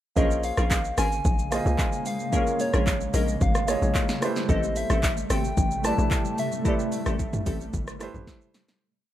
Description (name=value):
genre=amapiano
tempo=111 BPM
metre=4/4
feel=straight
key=unclear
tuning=A4 = 441 Hz
part: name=soft struck synth lead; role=melody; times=0.2-8.2 s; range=Db5 to A5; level=-30 LUFS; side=left 2 dB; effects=chorus, tape echo
part: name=warm grand piano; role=accompaniment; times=0.2-8.8 s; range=A3 to Eb5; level=-32 LUFS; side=right 3 dB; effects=none
part: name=granular cloud pad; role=sustained chords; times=1.1-8.8 s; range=C3 to Bb3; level=-32 LUFS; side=left 1 dB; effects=built-in reverb, sidechain pumping
part: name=glassy wavetable pluck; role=stabs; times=0.2-7.6 s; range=C4 to Bb4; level=-34 LUFS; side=equal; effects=chorus, tape echo
part: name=hollow log drum bass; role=bass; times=0.2-8.3 s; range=G1 to Db2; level=-26 LUFS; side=equal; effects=none
part: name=deep house drum kit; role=drums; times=0.2-8.8 s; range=handclaps, hi-hat, kick drum, rim click, shaker, snare drum, toms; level=-27 LUFS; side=equal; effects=none
room=digital ambience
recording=rough home demo mix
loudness=-22 LUFS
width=side -12 dB against mid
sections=0.2-8.8 drop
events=drop 0.2-8.8; fade-out 6.7-8.8; drum fill 8.3-8.8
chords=0.2 Bbm7; 4.2 Am7